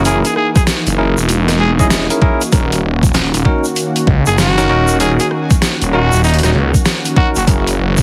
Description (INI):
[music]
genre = glitch hop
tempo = 97 BPM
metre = 4/4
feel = swing 64% on 16ths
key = Eb phrygian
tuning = A4 = 441 Hz
[part]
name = growling trumpet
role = melody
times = 0.0-7.4 s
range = Eb4 to Ab4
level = -21 LUFS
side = equal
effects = digital delay
[part]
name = warm analog pad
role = sustained chords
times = 0.0-8.0 s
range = Eb3 to Gb4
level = -23 LUFS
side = equal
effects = chorus, sidechain pumping
[part]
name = barky tine electric piano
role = stabs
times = 0.0-7.7 s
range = Db4 to Eb5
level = -21 LUFS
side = equal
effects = vintage 12-bit sampler grit, sidechain pumping, digital delay
[part]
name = phased detuned saw bass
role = bass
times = 0.0-8.0 s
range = Eb1 to Db2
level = -17 LUFS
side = equal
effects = phaser
[part]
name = dubstep drum kit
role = drums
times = 0.1-8.0 s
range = hi-hat, rim click, snare drum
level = -20 LUFS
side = equal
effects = overdrive, small room ambience
[part]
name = tube shaker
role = percussion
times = 0.1-8.0 s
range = none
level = -27 LUFS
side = equal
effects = none
[part]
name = electronic kick drum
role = drums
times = 0.6-8.0 s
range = none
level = -15 LUFS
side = equal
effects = overdrive, small room ambience
[sound]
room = light reverb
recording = heavily compressed radio sound, multiband compression, vinyl crackle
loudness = -13 LUFS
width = mono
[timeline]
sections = 0.0-8.0 A section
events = none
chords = 0.0 Gb7; 2.5 Ebm7; 7.5 Gb7